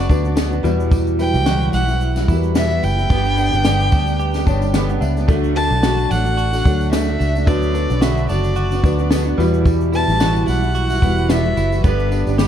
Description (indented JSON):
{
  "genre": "acoustic pop",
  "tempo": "110 BPM",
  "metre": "4/4",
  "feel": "swing 55% on 16ths",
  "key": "unclear",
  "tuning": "A4 = 440 Hz",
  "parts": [
    { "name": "dark violin", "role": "melody", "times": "0.0-12.4 s", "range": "B4 to A5", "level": "-23 LUFS", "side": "equal", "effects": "plate reverb, ping-pong delay" },
    { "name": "felt-muted upright piano", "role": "accompaniment", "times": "0.0-12.5 s", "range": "F#3 to A5", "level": "-26 LUFS", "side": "left 5 dB", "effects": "plate reverb" },
    { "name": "fingerpicked steel-string acoustic guitar", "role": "accompaniment", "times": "0.0-12.5 s", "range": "E2 to G4", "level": "-22 LUFS", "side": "equal", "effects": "double-tracked left and right, plate reverb" },
    { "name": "direct-recorded clean electric guitar", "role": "arpeggios", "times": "0.0-12.5 s", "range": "F#3 to G4", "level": "-28 LUFS", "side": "right 7 dB", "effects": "plate reverb" },
    { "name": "vintage muted fingered electric bass", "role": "bass", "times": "0.0-12.5 s", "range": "E1 to E2", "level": "-19 LUFS", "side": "equal", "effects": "none" },
    { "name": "compact cocktail drum kit", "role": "drums", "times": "0.1-12.5 s", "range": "kick drum, shaker, snare drum", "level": "-18 LUFS", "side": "equal", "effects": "none" },
    { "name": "tambourine", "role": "percussion", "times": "0.1-12.5 s", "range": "none", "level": "-40 LUFS", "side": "left 4 dB", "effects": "none" }
  ],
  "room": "light reverb",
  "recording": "dark, warm production",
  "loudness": "-15 LUFS",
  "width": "side -9 dB against mid",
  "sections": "0.0-12.5 A section",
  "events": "felt piano fill 4.2-5.3",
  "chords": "0.0 Bm; 0.6 Emadd9; 3.1 G; 5.3 D; 7.5 Bm; 9.4 Emadd9; 11.8 G"
}